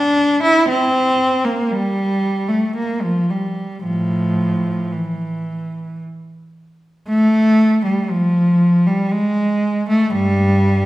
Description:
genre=classical, baroque-style suite movement for unaccompanied cello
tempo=54-60 BPM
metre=3/4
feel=rubato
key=unclear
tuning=A4 = 438 Hz
part: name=rich cello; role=solo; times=0.0-10.9 s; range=G2 to E4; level=-15 LUFS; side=equal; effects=none
room=wet recital hall reverb, RT60 1.5 s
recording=none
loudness=-15 LUFS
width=side -16 dB against mid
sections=0.0-7.1 A section; 7.1-10.9 B section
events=none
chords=none

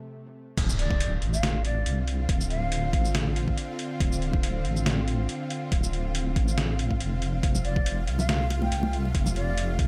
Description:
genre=deep dubstep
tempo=140 BPM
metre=4/4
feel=swing 54% on 16ths, half-time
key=D minor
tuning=A4 = 438 Hz
part: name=bowed-like drone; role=sustained chords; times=1.2-9.9 s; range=C3 to F4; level=-37 LUFS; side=equal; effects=built-in reverb
part: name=deep soft wobble bass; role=bass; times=0.6-9.9 s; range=D1 to C2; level=-30 LUFS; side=equal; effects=chorus
part: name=electronic kick drum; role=drums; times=0.6-9.9 s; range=none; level=-28 LUFS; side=equal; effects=none
part: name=trip hop sampler-style drum kit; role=drums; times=0.6-9.9 s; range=crash cymbal, hi-hat, shaker, snare drum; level=-34 LUFS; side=equal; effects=none
part: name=impact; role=sound effects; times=0.6-2.3 s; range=none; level=-38 LUFS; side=equal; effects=none
part: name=wind-like tuned noise texture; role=texture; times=1.2-9.9 s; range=F5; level=-43 LUFS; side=equal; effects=built-in reverb
part: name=breathy shakuhachi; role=melody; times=0.8-3.1, 7.6-9.7 s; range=D5 to G5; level=-37 LUFS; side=equal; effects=dub echo
part: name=congas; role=percussion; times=7.5-9.5 s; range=none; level=-34 LUFS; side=equal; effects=none
room=light reverb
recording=none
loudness=-27 LUFS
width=mono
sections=0.6-9.9 A section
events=break 0.0-0.6; drop 0.6-9.9; impact 0.6-2.3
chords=0.0 N.C.; 0.6 Dm7; 7.4 F

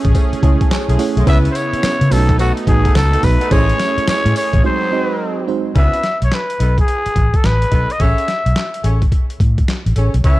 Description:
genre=R&B, new jack swing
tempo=107 BPM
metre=4/4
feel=swing 64% on 16ths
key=unclear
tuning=A4 = 439 Hz
part: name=FM electric piano with soft pad layer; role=accompaniment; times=0.0-5.8 s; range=G#3 to A5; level=-21 LUFS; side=right 6 dB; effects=chorus
part: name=brassy analog pad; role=sustained chords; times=0.0-5.7 s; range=C#3 to G#4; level=-24 LUFS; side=right 1 dB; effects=chorus
part: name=vintage muted fingered electric bass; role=bass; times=0.0-10.4 s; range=A1 to C#3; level=-15 LUFS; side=equal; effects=none
part: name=boom bap sampler-style drum kit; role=drums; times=0.0-10.4 s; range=handclaps, hi-hat, kick drum, snare drum, tambourine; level=-17 LUFS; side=equal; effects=none
part: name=cowbell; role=percussion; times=0.2-4.2 s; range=none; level=-34 LUFS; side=left 4 dB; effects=none
part: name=dark horn section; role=stabs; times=0.4-10.4 s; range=G#3 to C#5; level=-26 LUFS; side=left 1 dB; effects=none
part: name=growling trumpet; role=melody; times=1.3-10.4 s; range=F#4 to E5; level=-19 LUFS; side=left 1 dB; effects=none
room=little or no reverb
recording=dark, warm production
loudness=-13 LUFS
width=side -17 dB against mid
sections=0.0-5.8 A section; 5.8-10.4 B section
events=FM electric piano fill 0.1-1.3; break 4.6-5.8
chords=0.0 Amaj7; 1.3 C#m7; 2.1 B7; 3.5 Amaj7; 4.6 G#7; 5.8 C#m7; 6.6 B7; 8.0 Amaj7

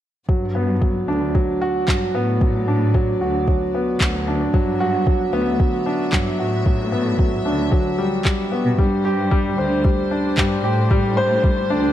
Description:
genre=piano and strings electronica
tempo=113 BPM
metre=4/4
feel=straight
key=G major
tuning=A4 = 436 Hz
part: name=warm symphonic string section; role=sustained chords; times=0.3-11.9 s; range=B3 to E5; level=-32 LUFS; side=left 2 dB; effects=sidechain pumping
part: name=clear grand piano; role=riff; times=0.3-11.9 s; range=F#3 to C5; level=-20 LUFS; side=equal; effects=digital delay
part: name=dark studio cello section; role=bass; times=0.3-11.9 s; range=D2 to B2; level=-24 LUFS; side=equal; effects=tube saturation, sidechain pumping
part: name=electronic kick drum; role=drums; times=0.3-11.5 s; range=none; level=-19 LUFS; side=equal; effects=none
part: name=electronic handclaps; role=drums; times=1.9-10.5 s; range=none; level=-25 LUFS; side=equal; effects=none
room=light reverb, studio reverb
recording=dark, warm production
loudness=-17 LUFS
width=side -12 dB against mid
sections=0.3-11.9 A section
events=fade-in on string section 0.3-11.9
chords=0.3 Gmaj7; 8.8 Csus2

